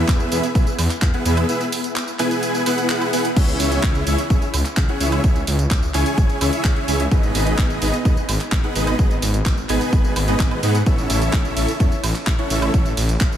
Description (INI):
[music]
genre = EDM, festival progressive house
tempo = 128 BPM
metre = 4/4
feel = straight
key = C# minor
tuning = A4 = 442 Hz
[part]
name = dense compressed supersaw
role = riff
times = 0.0-12.9 s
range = B3 to G#5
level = -22 LUFS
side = equal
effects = sidechain pumping, analog delay
[part]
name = detuned saw bass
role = bass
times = 0.0-13.4 s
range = G#1 to G#2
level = -22 LUFS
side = equal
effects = sidechain pumping
[part]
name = electronic kick drum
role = drums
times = 0.1-13.3 s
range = none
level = -18 LUFS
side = equal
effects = none
[part]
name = house drum kit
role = drums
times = 0.1-13.4 s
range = crash cymbal, handclaps, hi-hat, ride cymbal, tambourine, woodblock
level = -26 LUFS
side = right 2 dB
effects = none
[sound]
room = moderate cathedral reverb, RT60 6.3 s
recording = dreamy mix soaked in reverb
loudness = -16 LUFS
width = side -10 dB against mid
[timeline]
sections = 0.0-3.4 A section; 3.4-13.4 A section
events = drop 0.0-3.4, 3.4-13.4; break 1.5-3.4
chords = 0.0 E; 3.4 C#m; 7.1 G#m; 10.9 A